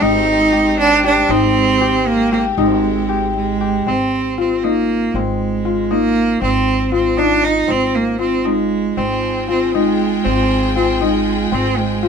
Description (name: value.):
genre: contemporary instrumental, chamber music in an uneven meter.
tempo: 235 BPM (eighths).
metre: 5/8.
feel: straight.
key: Ab major.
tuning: A4 = 439 Hz.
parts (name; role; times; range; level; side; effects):
bright cello; melody; 0.0-12.1 s; F3 to Eb4; -16 LUFS; right 5 dB; none.
clear studio string section; sustained chords; 0.0-3.8, 9.0-12.1 s; Ab3 to G5; -24 LUFS; left 4 dB; none.
concert harp; arpeggios; 0.0-12.1 s; C4 to G4; -19 LUFS; left 6 dB; none.
upright bass; bass; 0.0-12.1 s; Ab1; -24 LUFS; equal; none.
room: light reverb.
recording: minimal, uncompressed stereo recording.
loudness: -14 LUFS.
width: side -6 dB against mid.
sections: 0.0-3.9 A section; 3.9-12.1 B section.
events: none.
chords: 0.0 Abmaj7; 3.9 Ab.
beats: | 0.02 0.28 0.53 0.79 1.04 | 1.30 1.55 1.81 2.06 2.32 | 2.57 2.83 3.09 3.35 3.61 | 3.87 4.12 4.38 4.64 4.89 | 5.15 5.41 5.66 5.92 6.17 | 6.42 6.67 6.93 7.18 7.44 | 7.69 7.95 8.21 8.46 8.72 | 8.98 9.23 9.49 9.75 10.00 | 10.26 10.51 10.77 11.02 11.27 | 11.53 11.78 12.03.